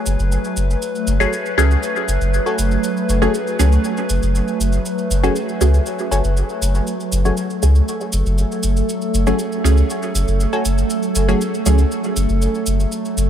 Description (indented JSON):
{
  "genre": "dub techno",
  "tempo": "119 BPM",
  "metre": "4/4",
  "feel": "straight",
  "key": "F# minor",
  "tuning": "A4 = 441 Hz",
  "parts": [
    { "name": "warbly tape-like pad", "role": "sustained chords", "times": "0.0-13.3 s", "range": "F#3 to B4", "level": "-22 LUFS", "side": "right 1 dB", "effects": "chorus, built-in reverb, phaser" },
    { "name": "warm sub bass", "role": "bass", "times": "0.1-13.3 s", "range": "F#1 to C#2", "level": "-16 LUFS", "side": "equal", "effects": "none" },
    { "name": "cabasa", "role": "percussion", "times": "0.1-13.3 s", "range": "none", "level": "-28 LUFS", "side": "right 2 dB", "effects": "none" },
    { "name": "wavetable chord stab", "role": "riff", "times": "1.2-11.4 s", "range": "F#4 to G#5", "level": "-29 LUFS", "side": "left 2 dB", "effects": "dub echo" },
    { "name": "filtered dub chord stab", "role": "stabs", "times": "1.2-11.8 s", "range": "F#3 to G#4", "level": "-22 LUFS", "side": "right 1 dB", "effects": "phaser, dub echo" }
  ],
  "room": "light reverb",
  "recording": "dark, warm production",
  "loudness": "-16 LUFS",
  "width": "side -9 dB against mid",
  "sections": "0.0-13.3 A section",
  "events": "none",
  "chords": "0.0 F#madd9"
}